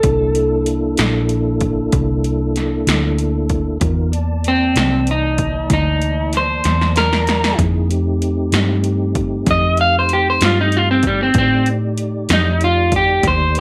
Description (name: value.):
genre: slow blues.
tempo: 64 BPM (dotted quarters).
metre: 12/8.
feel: straight.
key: C mixolydian.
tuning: A4 = 439 Hz.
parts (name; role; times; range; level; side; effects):
electric guitar through a small old amp; melody; 0.0-13.6 s; G3 to F5; -18 LUFS; equal; none.
mellow tonewheel organ; sustained chords; 0.0-13.6 s; E3 to A5; -25 LUFS; equal; chorus vibrato, stopped rotary speaker.
vintage muted fingered electric bass; bass; 0.0-13.6 s; Bb1 to A2; -21 LUFS; equal; none.
80s electronic pad drums; drums; 0.0-13.6 s; hi-hat, kick drum, snare drum; -23 LUFS; equal; none.
room: digital ambience.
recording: none.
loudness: -16 LUFS.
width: mono.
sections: 0.0-13.6 A section.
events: clean electric guitar solo 0.0-13.6; drum fill 6.6-7.6.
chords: 0.0 C13; 7.6 F13.